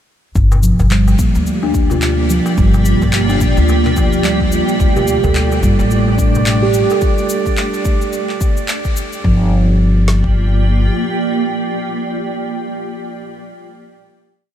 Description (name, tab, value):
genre	organic downtempo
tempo	108 BPM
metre	4/4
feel	swing 59% on 16ths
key	G minor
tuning	A4 = 440 Hz
part	granular cloud pad	sustained chords	1.4-12.2 s	A3 to G5	-21 LUFS	right 1 dB	built-in reverb, lush chorus, sidechain pumping
part	upright bass	bass	0.4-10.9 s	G1 to G2	-15 LUFS	left 1 dB	sidechain pumping
part	deep house drum kit	drums	0.4-10.3 s	kick drum, snare drum	-16 LUFS	left 1 dB	studio reverb
part	electronic shaker and handclaps	drums	0.4-9.2 s	none	-25 LUFS	left 1 dB	studio reverb
part	darbuka	percussion	0.5-7.0 s	none	-25 LUFS	left 3 dB	none
part	steel tongue drum	arpeggios	0.6-9.5 s	F3 to A4	-18 LUFS	right 2 dB	analog delay
part	drifting glass-harmonics texture	texture	5.3-9.3 s	D5	-27 LUFS	right 2 dB	chorus, built-in reverb
room	moderate huge ambient reverb, RT60 7.4 s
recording	dreamy mix soaked in reverb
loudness	-12 LUFS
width	side -10 dB against mid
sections	0.4-9.2 groove; 9.2-11.5 final chord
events	none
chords	0.4 Gm7; 4.8 Dsus4; 9.2 Gm7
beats	| 0.35 0.91 1.47 2.02 | 2.58 3.13 3.69 4.24 | 4.80 5.35 5.91 6.46 | 7.02 7.58 8.13 8.69 | 9.24 9.80 10.35 10.91